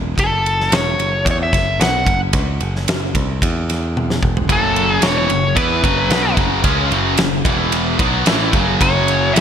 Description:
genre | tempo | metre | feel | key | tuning
hard rock | 111 BPM | 4/4 | straight | F# minor | A4 = 441 Hz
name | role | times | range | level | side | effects
modern bright picked electric bass | bass | 0.0-9.4 s | E1 to E2 | -21 LUFS | equal | none
nasal lead guitar with a parked wah | melody | 0.2-9.4 s | A4 to F#5 | -19 LUFS | left 1 dB | overdrive, ping-pong delay
big rock drum kit | drums | 0.2-9.4 s | kick drum, ride cymbal, snare drum, toms | -19 LUFS | equal | none
high-gain distorted guitar | riff | 4.5-9.4 s | E2 to E4 | -17 LUFS | equal | distortion
room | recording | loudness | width
light reverb, small room ambience | bright 1980s-style digital production | -14 LUFS | side -8 dB against mid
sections
0.0-9.4 A section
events
drum fill 4.0-4.5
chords
0.0 N.C.; 4.2 F#5; 7.5 E5; 8.0 F#m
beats
| 0.19 0.73 1.27 1.80 | 2.34 2.88 3.42 3.96 | 4.50 5.04 5.58 6.12 | 6.65 7.19 7.73 8.27 | 8.81 9.35

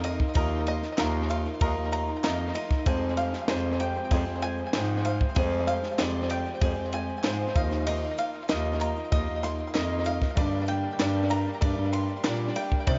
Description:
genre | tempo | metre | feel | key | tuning
indie folk with a building arrangement | 96 BPM | 4/4 | straight | Eb major | A4 = 440 Hz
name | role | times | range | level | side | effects
picked twelve-string acoustic guitar | accompaniment | 0.0-13.0 s | F2 to G4 | -37 LUFS | equal | tape echo
warm upright piano | accompaniment | 0.0-13.0 s | F1 to G5 | -38 LUFS | equal | tape echo
bluegrass banjo | arpeggios | 0.0-13.0 s | Ab4 to C6 | -36 LUFS | equal | tape echo
mellow bass clarinet | bass | 0.0-13.0 s | Eb2 to C3 | -32 LUFS | equal | none
compact cocktail drum kit | drums | 0.0-13.0 s | kick drum, ride cymbal, snare drum | -32 LUFS | equal | tape echo
egg shaker | percussion | 0.0-13.0 s | none | -60 LUFS | equal | none
group handclap | percussion | 1.0-12.4 s | none | -44 LUFS | equal | none
room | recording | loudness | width
light reverb | echo-heavy mix, nothing above 7.6 kHz | -28 LUFS | mono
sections
0.0-13.0 A section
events
none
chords
0.0 Ebsus2; 2.9 Fmadd9; 7.6 Ebsus2; 10.4 Gm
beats
| 0.36 0.99 1.61 2.24 | 2.86 3.49 4.11 4.74 | 5.37 5.99 6.62 7.24 | 7.87 8.49 9.12 9.74 | 10.37 11.00 11.62 12.25 | 12.87

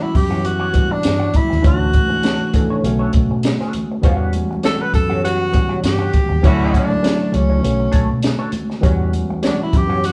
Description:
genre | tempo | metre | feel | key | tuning
lush 1970s-style soul | 100 BPM | 4/4 | swing 54% on 16ths | E dorian | A4 = 441 Hz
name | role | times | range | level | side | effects
breathy tenor saxophone | melody | 0.0-10.1 s | C#4 to B4 | -23 LUFS | equal | none
tine electric piano | accompaniment | 0.0-10.1 s | C#3 to F#5 | -24 LUFS | equal | none
compact cocktail drum kit | drums | 0.1-10.1 s | hi-hat, kick drum, snare drum | -20 LUFS | equal | vintage 12-bit sampler grit
electric guitar through a small old amp | riff | 0.2-10.1 s | D4 to F#5 | -30 LUFS | equal | wah
vintage muted fingered electric bass | bass | 0.2-10.1 s | B1 to B2 | -23 LUFS | equal | none
congas | percussion | 0.2-10.1 s | none | -32 LUFS | equal | none
mellow horn section | stabs | 6.4-6.9 s | D3 to F#4 | -27 LUFS | equal | none
room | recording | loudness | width
moderate large studio reverb, RT60 1.1 s | band playing live in one room, cassette tape | -17 LUFS | mono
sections
0.0-10.1 A section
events
band accent 6.4-8.8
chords
0.0 Em69; 1.6 Dmaj7; 2.8 Bm9; 4.0 Em69; 6.4 Dmaj7; 7.6 Bm9; 8.8 Em69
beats
0.45 1.05 | 1.65 2.24 2.84 3.44 | 4.04 4.64 5.24 5.84 | 6.43 7.03 7.63 8.23 | 8.83 9.43 10.03

